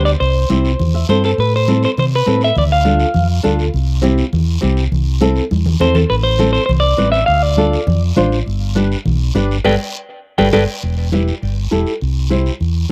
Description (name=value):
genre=latin, cumbia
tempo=203 BPM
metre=4/4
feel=straight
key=C major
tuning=A4 = 440 Hz
part: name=clean electric guitar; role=melody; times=0.0-3.3, 5.8-10.6 s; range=A4 to G5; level=-20 LUFS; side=equal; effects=spring reverb
part: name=flamenco guitar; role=accompaniment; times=0.0-12.9 s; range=B3 to E5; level=-20 LUFS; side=equal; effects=none
part: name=fingered electric bass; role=bass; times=0.0-12.8 s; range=E1 to C3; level=-18 LUFS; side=equal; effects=none
part: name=guiro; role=percussion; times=0.1-12.9 s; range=none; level=-33 LUFS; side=equal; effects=none
part: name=congas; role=percussion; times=0.2-12.9 s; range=none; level=-23 LUFS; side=equal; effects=none
room=light reverb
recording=dry, close 1970s-style studio recording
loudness=-15 LUFS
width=mono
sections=0.0-1.4 A section; 1.4-10.8 B section; 10.8-12.9 C section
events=nylon-string guitar fill 0.8-1.4; drum fill 5.5-6.1, 10.4-10.8; band accent 9.6-10.8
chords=0.2 C; 1.4 Amadd9; 2.6 Dm; 3.7 C; 6.1 Amadd9; 7.3 Dm; 8.5 Gadd9; 10.8 Em; 12.0 C